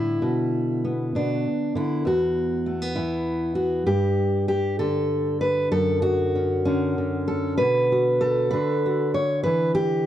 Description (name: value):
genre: folk, solo fingerstyle acoustic guitar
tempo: 65 BPM (dotted quarters)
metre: 6/8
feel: rubato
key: unclear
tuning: A4 = 440 Hz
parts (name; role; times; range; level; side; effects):
- fingerpicked steel-string acoustic guitar; solo; 0.0-10.1 s; E2 to C#5; -21 LUFS; equal; none
room: light reverb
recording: dark, warm production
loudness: -21 LUFS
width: side -11 dB against mid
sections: 0.2-10.1 A section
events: none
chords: 0.2 Bm; 2.1 E5; 3.9 Gsus2; 5.7 Dmaj7/F#; 7.6 Bm; 9.5 Em7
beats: | 0.22 1.14 | 2.06 2.95 | 3.86 4.79 | 5.72 6.65 | 7.60 8.53 | 9.46